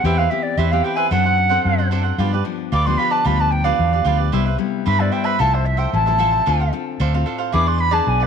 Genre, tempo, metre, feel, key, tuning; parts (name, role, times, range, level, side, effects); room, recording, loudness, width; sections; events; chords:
samba; 112 BPM; 4/4; straight; C major; A4 = 441 Hz
wooden flute; melody; 0.0-8.3 s; B4 to D6; -19 LUFS; right 1 dB
cavaquinho; accompaniment; 0.0-8.3 s; D4 to F#5; -25 LUFS; right 11 dB
nylon-string guitar; accompaniment; 0.0-8.3 s; G2 to A4; -25 LUFS; left 12 dB
vintage muted fingered electric bass; bass; 0.0-8.3 s; A1 to G2; -19 LUFS; equal
moderate echo chamber reverb, RT60 1.5 s, small room ambience; 1960s-style stereo with parts hard left and right; -16 LUFS; side -7 dB against mid
0.0-8.3 A section
flute solo 0.0-8.3
0.0 Cmaj7/E; 1.1 D7/F#; 2.2 G7; 4.3 Cmaj7; 5.4 Fmaj7/C; 6.5 Dm7; 7.5 E7